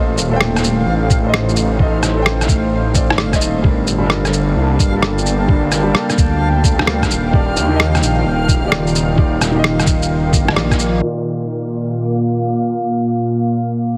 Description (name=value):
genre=future garage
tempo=130 BPM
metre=4/4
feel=swing 66% on 16ths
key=unclear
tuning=A4 = 442 Hz
part: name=felt-muted upright piano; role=accompaniment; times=0.0-14.0 s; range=Bb2 to G5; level=-25 LUFS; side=equal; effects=sidechain pumping, dub echo
part: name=warbly tape-like pad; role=sustained chords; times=0.0-14.0 s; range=A2 to A5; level=-22 LUFS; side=equal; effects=chorus, built-in reverb, vintage 12-bit sampler grit, sidechain pumping
part: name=swelling detuned saw bass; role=bass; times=0.0-11.0 s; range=Eb1 to Eb2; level=-20 LUFS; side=equal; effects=tube saturation, sidechain pumping
part: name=backwards swelling texture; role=texture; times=0.0-14.0 s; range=F5 to D6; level=-31 LUFS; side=equal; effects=built-in reverb
part: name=electronic shaker and rim click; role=drums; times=0.2-10.9 s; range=none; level=-22 LUFS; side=equal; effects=low-pass filter on perc, low-pass filter on snare
part: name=electronic kick drum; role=drums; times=1.1-10.8 s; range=none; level=-17 LUFS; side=equal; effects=none
room=light reverb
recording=heavily compressed radio sound, multiband compression, vinyl crackle, low-pass filter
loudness=-16 LUFS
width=mono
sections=0.0-11.0 A section; 11.0-14.0 B section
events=band accent 10.6; filter sweep 11.0-14.0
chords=0.0 Adim; 3.6 Gmadd9; 7.3 Ebmaj7; 11.0 Bb